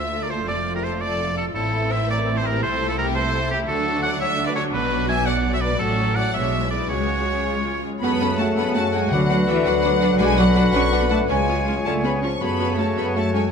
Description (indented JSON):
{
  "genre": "classical, dramatic, fast romantic movement for symphony orchestra",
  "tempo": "111 BPM (dotted quarters)",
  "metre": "6/8",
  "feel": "rubato",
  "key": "F# minor from 3.7 s",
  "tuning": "A4 = 440 Hz",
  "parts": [
    { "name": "warm studio violin section", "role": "melody", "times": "0.0-13.5 s", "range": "E4 to C#6", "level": "-30 LUFS", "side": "left 3 dB", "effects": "none" },
    { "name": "bright oboe", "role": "second line", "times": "0.0-13.5 s", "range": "G4 to G#5", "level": "-27 LUFS", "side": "right 1 dB", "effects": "none" },
    { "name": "clear symphonic violin section", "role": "second line", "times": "0.0-13.4 s", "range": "G4 to G#5", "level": "-30 LUFS", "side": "left 2 dB", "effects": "none" },
    { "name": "clear symphonic viola section", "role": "accompaniment", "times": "0.0-13.4 s", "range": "F#3 to F#4", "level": "-30 LUFS", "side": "equal", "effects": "none" },
    { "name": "concert harp", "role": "arpeggios", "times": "0.0-13.5 s", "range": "F#2 to B5", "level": "-28 LUFS", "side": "left 9 dB", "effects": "none" },
    { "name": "rich symphonic cello section", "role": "bass", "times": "0.0-13.4 s", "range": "D2 to C#4", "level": "-25 LUFS", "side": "right 2 dB", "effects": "none" },
    { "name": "rich symphonic double bass section", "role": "bass", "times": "0.0-13.5 s", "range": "F1 to F#2", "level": "-27 LUFS", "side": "right 3 dB", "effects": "none" },
    { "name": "silver concert flute", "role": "second line", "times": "8.0-13.5 s", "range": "G#5 to B5", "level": "-30 LUFS", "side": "left 1 dB", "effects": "none" },
    { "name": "warm clarinet", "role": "second line", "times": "8.0-13.5 s", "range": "E#4 to F#4", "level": "-32 LUFS", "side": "left 1 dB", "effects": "none" },
    { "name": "mellow bassoon", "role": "accompaniment", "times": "8.0-13.5 s", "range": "C#3 to E#3", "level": "-28 LUFS", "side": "right 1 dB", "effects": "none" },
    { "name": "warm French horn section", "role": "sustained chords", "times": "8.0-13.5 s", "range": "C#4 to B4", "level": "-28 LUFS", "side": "left 4 dB", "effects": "none" },
    { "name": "timpani", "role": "percussion", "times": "9.1-9.6 s", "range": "D3", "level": "-26 LUFS", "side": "left 1 dB", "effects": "none" }
  ],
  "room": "moderate scoring stage reverb, RT60 1.6 s",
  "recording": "none",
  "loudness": "-18 LUFS",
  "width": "side -6 dB against mid",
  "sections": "0.0-8.0 A section; 8.0-13.5 B section",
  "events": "none",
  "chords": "0.5 Dm/F; 1.6 Am; 2.6 Am/C; 3.7 D; 4.7 Bm; 5.8 F#m/A; 6.3 G#dim/B; 6.9 C#sus4; 7.5 C#; 8.0 F#m; 9.1 Bm/D; 10.2 Bm; 11.3 C#; 12.4 F#m",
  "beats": "| 0.49 1.02 | 1.56 2.10 | 2.63 3.17 | 3.69 4.22 | 4.74 5.27 | 5.81 6.35 | 6.90 7.46 | 8.03 8.58 | 9.12 9.66 | 10.20 10.74 | 11.29 11.85 | 12.41 12.97 | 13.52"
}